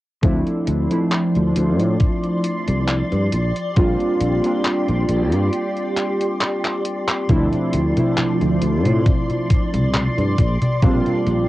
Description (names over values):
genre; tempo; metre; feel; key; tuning
vaporwave; 68 BPM; 4/4; swing 54% on 16ths; D minor; A4 = 440 Hz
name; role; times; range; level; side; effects
warbly lo-fi synth keys; accompaniment; 0.2-11.5 s; F3 to F4; -21 LUFS; equal; lush chorus, cassette tape, analog delay
soft string machine; sustained chords; 0.6-11.5 s; F3 to C6; -24 LUFS; equal; phaser, ensemble chorus, cassette tape
sustaining fretless electric bass; bass; 0.2-11.4 s; Bb1 to A2; -20 LUFS; equal; tube saturation, analog chorus
detuned 8-bit digital drum machine; drums; 0.2-11.5 s; congas, handclaps, hi-hat; -24 LUFS; equal; none
electronic kick drum; drums; 0.2-11.0 s; none; -18 LUFS; equal; none
room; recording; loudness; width
moderate booth ambience, RT60 0.2 s; home recording on cassette; -17 LUFS; side -17 dB against mid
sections
0.2-7.3 A section; 7.3-11.5 B section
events
break 5.5-7.3; drum fill 6.6-7.3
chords
0.2 Dm7; 3.3 Bb69; 7.3 Dm7; 10.4 Bb69